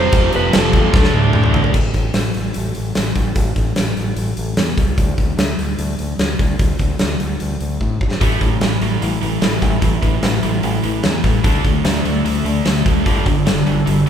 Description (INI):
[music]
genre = hard rock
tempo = 148 BPM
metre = 4/4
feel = straight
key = unclear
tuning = A4 = 436 Hz
[part]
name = lightly driven lead guitar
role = melody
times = 0.0-1.1 s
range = A4 to C5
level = -21 LUFS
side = equal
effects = digital delay
[part]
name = phased analog pad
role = sustained chords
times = 0.0-1.7, 9.0-14.1 s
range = F3 to E5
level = -29 LUFS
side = equal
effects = phaser, chorus
[part]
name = biting overdriven guitar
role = riff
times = 0.0-1.7, 8.2-14.1 s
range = F2 to D4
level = -23 LUFS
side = left 7 dB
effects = none
[part]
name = scooped high-gain guitar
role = riff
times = 0.0-1.7, 8.2-14.1 s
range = F2 to D4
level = -21 LUFS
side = right 5 dB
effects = distortion
[part]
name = growling fingered electric bass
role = bass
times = 0.0-14.0 s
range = F1 to A2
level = -22 LUFS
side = left 1 dB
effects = overdrive
[part]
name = huge arena drum kit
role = drums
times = 0.1-14.1 s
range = crash cymbal, hi-hat, kick drum, snare drum, toms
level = -17 LUFS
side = equal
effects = none
[sound]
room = light reverb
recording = band playing live in one room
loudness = -14 LUFS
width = side -8 dB against mid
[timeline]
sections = 0.0-1.7 A section; 1.7-14.1 B section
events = drum fill 0.9-1.7, 7.8-8.2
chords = 0.0 F; 0.9 D5; 1.7 N.C.; 5.0 D5; 8.2 A5; 11.4 D5; 13.1 G5